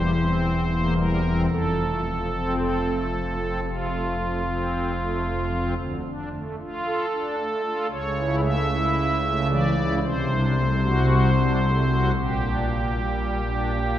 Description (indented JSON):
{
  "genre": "classical, chorale-style piece for pipe organ",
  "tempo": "56 BPM",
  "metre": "4/4",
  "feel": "rubato",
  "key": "unclear",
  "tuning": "A4 = 439 Hz",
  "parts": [
    { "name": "pipe organ, strings celeste", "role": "solo", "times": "0.0-14.0 s", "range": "E1 to E5", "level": "-21 LUFS", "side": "equal", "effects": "none" }
  ],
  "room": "wet church reverb, RT60 2.8 s",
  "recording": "heard from further back in the room",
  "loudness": "-21 LUFS",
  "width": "side -11 dB against mid",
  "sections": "0.0-14.0 A section",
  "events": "none",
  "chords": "0.0 C7/E; 1.5 F; 5.8 Dm; 7.9 A/C#; 10.0 D7/C; 12.2 Gm/Bb"
}